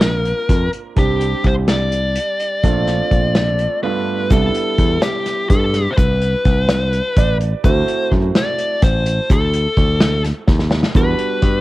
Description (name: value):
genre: progressive instrumental, band music in an uneven meter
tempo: 252 BPM (eighths)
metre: 7/8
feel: straight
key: C lydian from 4.3 s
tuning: A4 = 441 Hz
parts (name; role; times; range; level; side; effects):
- fuzz lead guitar; melody; 0.0-11.6 s; G4 to D5; -20 LUFS; left 2 dB; distortion, cassette tape
- warm grand piano; accompaniment; 0.0-11.6 s; G2 to D5; -24 LUFS; right 7 dB; cassette tape
- picked electric bass; bass; 0.0-11.6 s; A1 to G2; -18 LUFS; equal; none
- unplugged drum kit; drums; 0.0-11.5 s; hi-hat, kick drum, snare drum; -17 LUFS; equal; cassette tape
- egg shaker; percussion; 4.3-11.2 s; none; -45 LUFS; right 11 dB; none
room: small room ambience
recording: home recording on cassette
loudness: -14 LUFS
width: side -17 dB against mid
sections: 0.0-4.3 A section; 4.3-11.6 B section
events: grand piano fill 6.9-7.6; drum fill 10.5-11.0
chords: 0.0 Bb; 1.0 Csus2; 2.6 Bbmaj7; 3.8 G7; 4.3 Cmaj7; 7.6 D7; 11.0 Em9